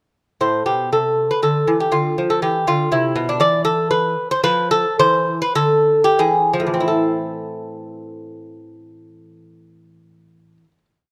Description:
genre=classical, baroque-style dance for lute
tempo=87-123 BPM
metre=3/4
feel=rubato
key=A minor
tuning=A4 = 440 Hz
part: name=lute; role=solo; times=0.4-10.8 s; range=A2 to D5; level=-18 LUFS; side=equal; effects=none
room=light reverb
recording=close, detailed microphones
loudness=-18 LUFS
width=mono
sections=0.4-6.9 A section; 6.9-11.0 final chord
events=slowing down 2.7-6.9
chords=0.4 Am; 1.9 Bdim/D; 3.4 N.C.; 5.0 D9sus4; 6.2 E; 6.9 Am

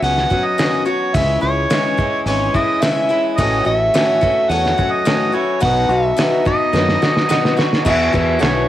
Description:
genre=folk rock and heartland rock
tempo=107 BPM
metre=4/4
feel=straight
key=E major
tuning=A4 = 440 Hz
part: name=overdriven harmonica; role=melody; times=0.0-8.7 s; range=F#4 to F#5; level=-18 LUFS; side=right 1 dB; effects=cassette tape
part: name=picked steel-string acoustic guitar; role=accompaniment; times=0.0-8.7 s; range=E2 to F#4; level=-20 LUFS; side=left 4 dB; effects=cassette tape
part: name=electric guitar through a small old amp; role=riff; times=0.0-8.7 s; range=E2 to F#4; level=-25 LUFS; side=right 3 dB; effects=cassette tape
part: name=fingered electric bass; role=bass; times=0.0-8.7 s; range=G#1 to F#2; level=-21 LUFS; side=right 1 dB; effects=tube saturation
part: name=cloth-damped thuddy drum kit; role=drums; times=0.0-8.6 s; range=crash cymbal, hi-hat, kick drum, ride cymbal, snare drum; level=-20 LUFS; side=equal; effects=cassette tape
part: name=clear concert grand piano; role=accompaniment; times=3.4-8.7 s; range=F#4 to F#5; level=-26 LUFS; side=right 2 dB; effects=cassette tape
room=light reverb, small room ambience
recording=home recording on cassette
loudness=-14 LUFS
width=side -13 dB against mid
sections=0.0-7.9 A section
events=drum fill 6.7-7.9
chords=0.0 F#sus4; 1.2 C#m; 3.4 A6; 5.6 B; 7.9 Esus2

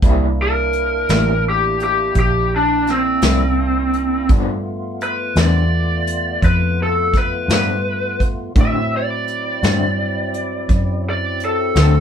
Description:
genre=slow blues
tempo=56 BPM (dotted quarters)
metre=12/8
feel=straight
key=unclear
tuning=A4 = 440 Hz
part: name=electric guitar through a small old amp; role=accompaniment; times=0.0-12.0 s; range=G2 to F#4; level=-23 LUFS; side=left 3 dB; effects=tremolo
part: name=tonewheel organ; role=sustained chords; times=0.0-12.0 s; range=F#3 to F4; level=-28 LUFS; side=right 1 dB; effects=slow rotary speaker, overdrive, chorus vibrato
part: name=vintage muted fingered electric bass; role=bass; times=0.0-12.0 s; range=A1 to A2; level=-20 LUFS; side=equal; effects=none
part: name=vintage brush drum kit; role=drums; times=0.0-11.9 s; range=hi-hat, kick drum, snare drum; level=-17 LUFS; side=equal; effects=none
part: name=lead guitar through a small cranked amp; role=melody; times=0.4-12.0 s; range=C4 to E5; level=-19 LUFS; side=equal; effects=overdrive
room=light reverb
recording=band playing live in one room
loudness=-15 LUFS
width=side -8 dB against mid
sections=0.0-12.0 A section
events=none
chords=0.0 C7; 4.3 G7; 8.6 D7

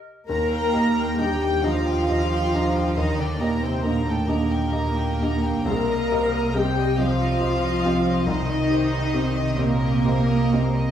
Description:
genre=cinematic, emotional film score for orchestra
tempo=45 BPM (dotted quarters)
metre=6/8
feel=uneven beats, rubato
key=Eb major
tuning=A4 = 440 Hz
part: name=felt-muted upright piano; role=accompaniment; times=0.0-10.9 s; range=C2 to Eb5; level=-27 LUFS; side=equal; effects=none
part: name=warm symphonic violin section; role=melody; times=0.3-10.9 s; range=C5 to Bb5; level=-33 LUFS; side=equal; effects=none
part: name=warm symphonic violin section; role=second line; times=0.3-10.9 s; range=A4 to Bb5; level=-30 LUFS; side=right 1 dB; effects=none
part: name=dark symphonic viola section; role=accompaniment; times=0.3-10.9 s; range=A3 to Bb4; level=-26 LUFS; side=left 1 dB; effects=none
part: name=dark studio double bass section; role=bass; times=0.3-10.9 s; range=C2 to Eb2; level=-26 LUFS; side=right 1 dB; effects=none
part: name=warm symphonic cello section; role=bass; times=0.3-10.9 s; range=A2 to Bb3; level=-27 LUFS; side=equal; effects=none
room=wet stone room reverb, RT60 1.3 s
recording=heard from further back in the room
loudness=-20 LUFS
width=side -9 dB against mid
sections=0.3-10.9 A section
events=none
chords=0.3 Ebmaj7; 5.7 Cm7

